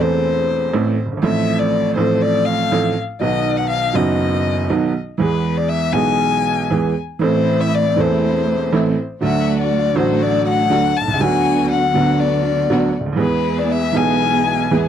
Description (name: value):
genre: tango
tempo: 120 BPM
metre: 4/4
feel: rubato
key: A harmonic minor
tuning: A4 = 439 Hz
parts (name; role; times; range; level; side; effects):
- warm violin; second line; 0.0-14.9 s; B4 to A5; -20 LUFS; left 9 dB; none
- clear upright piano; accompaniment; 0.0-14.9 s; E1 to A4; -17 LUFS; right 4 dB; none
- dark studio string section; stabs; 7.2-14.9 s; D3 to G#4; -23 LUFS; equal; none
room: little or no reverb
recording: dry, close 1970s-style studio recording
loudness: -15 LUFS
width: side -9 dB against mid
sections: 0.0-14.9 A section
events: violin solo 0.0-14.9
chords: 0.0 Am; 1.2 F/A; 3.2 B; 5.2 E; 7.2 Am; 9.2 D; 11.2 Bm/D; 13.2 E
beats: 0.24 0.74 | 1.23 1.73 2.22 2.72 | 3.21 3.71 4.20 4.70 | 5.20 5.70 6.20 6.71 | 7.21 7.72 8.22 8.72 | 9.22 9.71 10.21 10.70 | 11.20 11.69 12.19 12.69 | 13.19 13.69 14.20 14.71